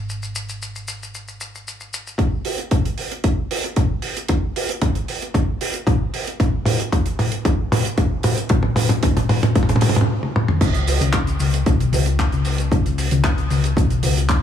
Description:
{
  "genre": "nu-disco, nu disco",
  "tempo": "114 BPM",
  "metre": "4/4",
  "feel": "straight",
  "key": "unclear",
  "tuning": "A4 = 439 Hz",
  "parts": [
    { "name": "hollow-body short-scale picked electric bass", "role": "bass", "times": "0.0-2.2, 10.6-14.4 s", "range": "G#1 to C#2", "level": "-20 LUFS", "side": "left 2 dB", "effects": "none" },
    { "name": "damped 70s drum kit", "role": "drums", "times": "0.1-14.4 s", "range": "crash cymbal, handclaps, hi-hat, shaker, toms", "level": "-21 LUFS", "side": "equal", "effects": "none" },
    { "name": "electronic kick drum", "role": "drums", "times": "2.2-14.4 s", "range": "none", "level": "-19 LUFS", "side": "equal", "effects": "none" }
  ],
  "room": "light reverb",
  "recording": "small room reverb",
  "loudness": "-17 LUFS",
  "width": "side -9 dB against mid",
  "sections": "0.0-2.2 A section; 2.2-10.6 B section; 10.6-14.4 C section",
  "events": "build-up 2.2-10.6; drum fill 2.2-10.1, 10.2-10.6; stop 10.1-10.6; drop 10.6-14.4",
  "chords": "none"
}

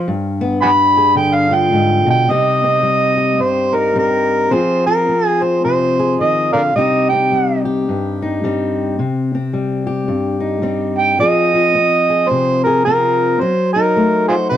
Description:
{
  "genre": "acoustic country blues, solo or duo",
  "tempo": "108 BPM",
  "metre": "4/4",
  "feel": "swing 61% on 8ths",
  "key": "C minor",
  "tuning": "A4 = 440 Hz",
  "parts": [
    { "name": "overdriven harmonica", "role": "melody", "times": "0.0-7.6, 11.0-14.6 s", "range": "F4 to B5", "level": "-14 LUFS", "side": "right 2 dB", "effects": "plate reverb" },
    { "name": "fingerpicked steel-string acoustic guitar", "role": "accompaniment", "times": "0.0-14.6 s", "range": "G2 to Ab4", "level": "-17 LUFS", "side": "left 2 dB", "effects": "none" }
  ],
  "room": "wet booth ambience, RT60 0.2 s",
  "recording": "dark, warm production",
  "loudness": "-13 LUFS",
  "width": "side -10 dB against mid",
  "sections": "0.0-2.3 A section; 2.3-14.6 B section",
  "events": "harmonica solo 0.0-2.3",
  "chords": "0.1 G7b9; 2.3 Cm; 4.5 Fm; 6.7 Cm; 11.2 Fm; 13.4 F#dim7"
}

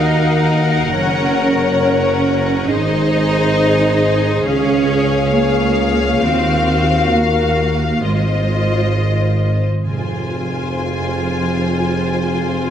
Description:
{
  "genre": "cinematic, epic orchestral film score",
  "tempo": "67 BPM (dotted quarters)",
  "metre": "6/8",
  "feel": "straight",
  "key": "unclear",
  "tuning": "A4 = 440 Hz",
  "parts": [
    { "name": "rich studio violin section", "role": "melody", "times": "0.0-12.7 s", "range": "Eb5 to Ab5", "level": "-23 LUFS", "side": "left 4 dB", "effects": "none" },
    { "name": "warm symphonic violin section", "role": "second line", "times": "0.0-12.7 s", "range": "C5 to F5", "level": "-24 LUFS", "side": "left 4 dB", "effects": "none" },
    { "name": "clear symphonic viola section", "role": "accompaniment", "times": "0.0-12.7 s", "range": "F4 to Bb4", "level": "-24 LUFS", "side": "equal", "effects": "none" },
    { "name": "mellow French horn section", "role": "sustained chords", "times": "0.0-12.7 s", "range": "C4 to Db5", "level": "-22 LUFS", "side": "left 3 dB", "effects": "none" },
    { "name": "rich symphonic cello section", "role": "bass", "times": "0.0-12.7 s", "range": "F2 to Eb4", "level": "-20 LUFS", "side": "right 3 dB", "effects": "none" },
    { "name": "warm symphonic double bass section", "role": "bass", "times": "0.0-10.4 s", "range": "F1 to Eb2", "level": "-20 LUFS", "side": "right 1 dB", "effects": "none" },
    { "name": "warm tuba", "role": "bass", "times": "0.0-12.7 s", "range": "F1 to Eb2", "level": "-22 LUFS", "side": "right 2 dB", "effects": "none" }
  ],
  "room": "wet concert hall reverb, RT60 2.2 s",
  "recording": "none",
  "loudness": "-14 LUFS",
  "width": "side -9 dB against mid",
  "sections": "0.0-9.9 A section; 9.9-12.7 B section",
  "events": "none",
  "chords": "0.0 Ebmadd9; 0.9 Gb; 2.7 Ab; 4.5 Db; 6.2 Ebmadd9; 8.1 Ab6; 9.9 Fm"
}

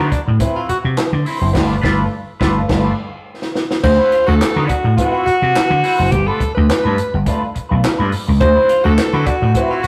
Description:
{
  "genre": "funk",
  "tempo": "105 BPM",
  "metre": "4/4",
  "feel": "straight",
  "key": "D mixolydian",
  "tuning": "A4 = 440 Hz",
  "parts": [
    { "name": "breathy tenor saxophone", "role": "second line", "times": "0.0-9.9 s", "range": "D4 to F#4", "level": "-26 LUFS", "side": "equal", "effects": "none" },
    { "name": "clean electric guitar", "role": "accompaniment", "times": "0.0-9.9 s", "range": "F#3 to C5", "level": "-25 LUFS", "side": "equal", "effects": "wah" },
    { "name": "vintage slap bass", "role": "bass", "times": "0.0-9.9 s", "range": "F#1 to D3", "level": "-19 LUFS", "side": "equal", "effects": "none" },
    { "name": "compact cocktail drum kit", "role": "drums", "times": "0.1-9.9 s", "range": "crash cymbal, handclaps, hi-hat, kick drum, snare drum", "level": "-23 LUFS", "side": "equal", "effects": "none" },
    { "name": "breathy alto saxophone", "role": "melody", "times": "3.8-9.9 s", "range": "F#4 to C5", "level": "-18 LUFS", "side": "equal", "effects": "none" }
  ],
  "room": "wet stone room reverb, RT60 1.1 s",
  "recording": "rough rehearsal-room recording, warm saturation",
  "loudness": "-16 LUFS",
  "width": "mono",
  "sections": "0.0-3.8 A section; 3.8-9.9 B section",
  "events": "band accent 1.5-3.8; drum fill 3.3-3.8",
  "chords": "0.0 D13; 1.5 G9; 3.8 D13; 6.1 G9; 8.4 D13"
}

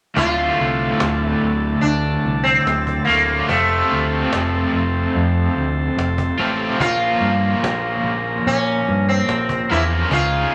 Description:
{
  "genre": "psychedelic rock",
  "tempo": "72 BPM",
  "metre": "4/4",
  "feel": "straight",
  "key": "D minor",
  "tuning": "A4 = 440 Hz",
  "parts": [
    { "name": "sitar", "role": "melody", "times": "0.2-10.5 s", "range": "A3 to F4", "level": "-22 LUFS", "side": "equal", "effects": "none" },
    { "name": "combo organ", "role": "sustained chords", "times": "0.2-10.5 s", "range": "E#4 to Bb5", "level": "-30 LUFS", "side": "equal", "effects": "none" },
    { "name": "crunchy overdriven guitar", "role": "riff", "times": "0.2-10.5 s", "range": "D2 to Bb4", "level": "-23 LUFS", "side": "equal", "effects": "tremolo" },
    { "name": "growling fingered electric bass", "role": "bass", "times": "0.2-10.4 s", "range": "D1 to Bb2", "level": "-25 LUFS", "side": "equal", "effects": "overdrive" },
    { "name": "cajon", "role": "drums", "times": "0.2-10.3 s", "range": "none", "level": "-30 LUFS", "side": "equal", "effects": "none" }
  ],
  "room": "wet studio reverb, RT60 0.6 s",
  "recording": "none",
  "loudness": "-19 LUFS",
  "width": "mono",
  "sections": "0.2-10.5 A section",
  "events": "none",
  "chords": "0.2 Dm; 3.5 F; 6.8 Bbm"
}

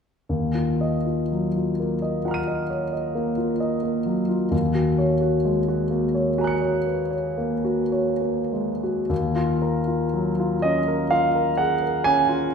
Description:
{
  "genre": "classical, impressionist solo piano",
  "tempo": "32-44 BPM (dotted quarters)",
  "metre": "9/8",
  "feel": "rubato",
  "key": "Eb minor",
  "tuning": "A4 = 441 Hz",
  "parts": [
    { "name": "warm concert grand piano", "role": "solo", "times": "0.3-12.5 s", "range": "Eb2 to Eb7", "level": "-20 LUFS", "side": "equal", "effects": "none" }
  ],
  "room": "wet recital hall reverb, RT60 1.7 s",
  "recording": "heard from further back in the room",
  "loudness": "-21 LUFS",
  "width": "side -6 dB against mid",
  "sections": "0.3-9.1 A section; 9.1-12.5 B section",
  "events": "none",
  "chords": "0.3 Ebmadd9; 4.5 Gbadd9/Eb; 9.1 Ebm11"
}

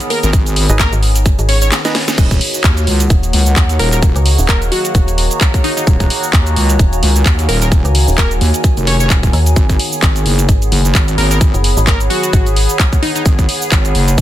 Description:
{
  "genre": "bass house",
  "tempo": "130 BPM",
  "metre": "4/4",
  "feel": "swing 57% on 16ths",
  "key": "Eb minor",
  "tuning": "A4 = 439 Hz",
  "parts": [
    { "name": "sweeping resonant pad", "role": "sustained chords", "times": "0.0-14.2 s", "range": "Eb3 to Ab4", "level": "-24 LUFS", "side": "left 1 dB", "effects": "chorus, phaser, sidechain pumping" },
    { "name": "garage drum kit", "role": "drums", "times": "0.0-14.2 s", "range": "cabasa, crash cymbal, handclaps, hi-hat, snare drum", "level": "-18 LUFS", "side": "equal", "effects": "studio reverb" },
    { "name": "warbly tape-like pad", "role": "texture", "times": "0.0-14.2 s", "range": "Ab4 to Cb6", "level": "-23 LUFS", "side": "right 2 dB", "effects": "chorus, built-in reverb, sidechain pumping" },
    { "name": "plucky unison lead", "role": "melody", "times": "0.1-13.2 s", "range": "Eb4 to Db5", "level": "-21 LUFS", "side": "left 1 dB", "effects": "tape echo" },
    { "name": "wobble bass", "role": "bass", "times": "0.2-14.2 s", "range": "Eb1 to Eb2", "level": "-14 LUFS", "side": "equal", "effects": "chorus, tube saturation, sidechain pumping" },
    { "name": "electronic kick drum", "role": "drums", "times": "0.3-14.2 s", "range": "none", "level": "-12 LUFS", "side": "equal", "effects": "studio reverb" },
    { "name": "percussive organ stab", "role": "stabs", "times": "0.7-2.0 s", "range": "Eb4 to Eb5", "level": "-24 LUFS", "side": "right 4 dB", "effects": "chorus, sidechain pumping, tape echo" },
    { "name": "metallic FM bass", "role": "bass", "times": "0.7-14.2 s", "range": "Eb1 to Eb2", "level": "-14 LUFS", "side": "equal", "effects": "sidechain pumping" }
  ],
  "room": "little or no reverb",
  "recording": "dense, heavily limited modern master",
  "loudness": "-10 LUFS",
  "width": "side -13 dB against mid",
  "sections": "0.0-2.2 A section; 2.2-14.2 A section",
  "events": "drop 0.0-2.2, 2.2-14.2; drum fill 1.7-2.2",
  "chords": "0.0 Abm; 2.2 Ebm; 9.6 Abm"
}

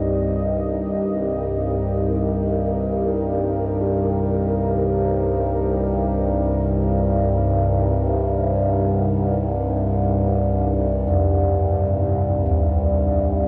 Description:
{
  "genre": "dark ambient drone",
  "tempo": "free time",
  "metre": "none",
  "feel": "none",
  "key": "unclear",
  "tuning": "A4 = 441 Hz",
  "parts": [
    { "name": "dark analog pad", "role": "sustained chords", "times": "0.0-13.5 s", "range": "C3 to Eb5", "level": "-29 LUFS", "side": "equal", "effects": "chorus" },
    { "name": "gamelan-type bossed gongs", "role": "arpeggios", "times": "0.0-2.4, 11.1-13.5 s", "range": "Eb2 to F2", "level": "-23 LUFS", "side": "equal", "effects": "none" },
    { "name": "overtone-sweeping drone", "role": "drone", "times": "0.0-13.5 s", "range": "C2 to G2", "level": "-22 LUFS", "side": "equal", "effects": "chorus, built-in reverb" },
    { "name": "bronze singing bowl", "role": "texture", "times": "3.8-13.5 s", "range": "G4", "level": "-34 LUFS", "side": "equal", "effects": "none" }
  ],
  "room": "wet huge ambient reverb, RT60 9.3 s",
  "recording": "dark, warm production",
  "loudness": "-21 LUFS",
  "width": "mono",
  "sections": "0.0-13.5 A section",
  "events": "fade-in on kettle gongs 0.0-13.5; fade-out on analog synth pad 0.0-13.5",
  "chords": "0.0 Cm"
}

